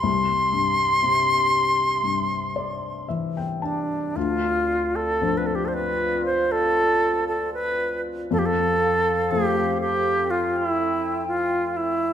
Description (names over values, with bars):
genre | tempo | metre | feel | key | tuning
celtic folk, Celtic slow air | 56-62 BPM | 4/4 | rubato | D minor | A4 = 440 Hz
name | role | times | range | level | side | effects
bright reedy wooden flute | melody | 0.0-12.1 s | D4 to C6 | -21 LUFS | equal | none
felt-muted upright piano | accompaniment | 0.0-12.1 s | C2 to A5 | -28 LUFS | left 5 dB | none
mellow large flute ensemble | sustained chords | 4.2-12.0 s | C4 to G5 | -30 LUFS | equal | none
room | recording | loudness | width
wet recital hall reverb, RT60 1.6 s | minimal, uncompressed stereo recording | -20 LUFS | side -9 dB against mid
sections
0.0-4.2 A section; 4.2-12.1 B section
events
felt piano fill 2.0-4.2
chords
0.0 C; 4.2 Dm7; 8.3 F